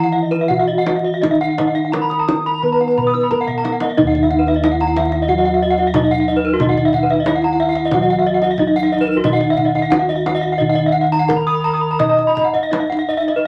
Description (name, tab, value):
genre	Balinese gamelan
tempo	89 BPM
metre	4/4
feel	uneven beats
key	Eb pelog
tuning	A4 = 441 Hz
part	gamelan-type bronze metallophone	melody	0.0-13.5 s	Eb4 to Eb5	-20 LUFS	equal	none
part	gamelan-type bronze metallophone	accompaniment	0.0-13.5 s	Eb3 to Eb4	-26 LUFS	equal	none
part	gamelan-type bronze metallophone	arpeggios	0.0-13.4 s	Bb4-30c to Fb6+20c	-23 LUFS	equal	none
part	gamelan-type bronze metallophone	arpeggios	0.0-13.5 s	Gb4-30c to Eb6	-23 LUFS	equal	none
part	gamelan-type bossed gongs	bass	0.0-13.5 s	Eb2 to Eb5	-29 LUFS	equal	none
part	kendang	percussion	0.3-13.4 s	none	-26 LUFS	equal	none
room	wet club reverb, RT60 0.5 s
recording	vinyl crackle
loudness	-16 LUFS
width	mono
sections	0.0-4.0 A section; 4.0-13.5 B section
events	drum fill 3.5-4.0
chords	none